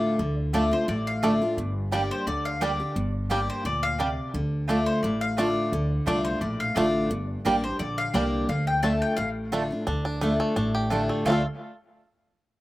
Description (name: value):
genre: bluegrass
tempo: 174 BPM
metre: 4/4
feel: swing 54% on 8ths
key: D minor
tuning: A4 = 440 Hz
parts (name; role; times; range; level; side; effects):
- mandolin; melody; 0.0-11.4 s; C5 to A5; -30 LUFS; left 2 dB; slapback echo
- picked steel-string acoustic guitar; accompaniment; 0.0-11.4 s; G2 to G4; -26 LUFS; left 1 dB; none
- upright bass; bass; 0.2-11.4 s; G1 to D2; -30 LUFS; equal; none
- bluegrass banjo; melody; 0.5-11.5 s; G3 to A4; -30 LUFS; right 2 dB; none
- mandolin; stabs; 0.5-11.4 s; A3 to A5; -30 LUFS; right 5 dB; none
room: little or no reverb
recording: recorded outdoors, with no room sound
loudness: -23 LUFS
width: side -17 dB against mid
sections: 0.0-9.9 A section; 9.9-11.3 B section; 11.3-12.6 C section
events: none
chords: 0.0 Dm; 1.6 Gm; 4.3 Dm; 7.1 Gm; 8.5 Dm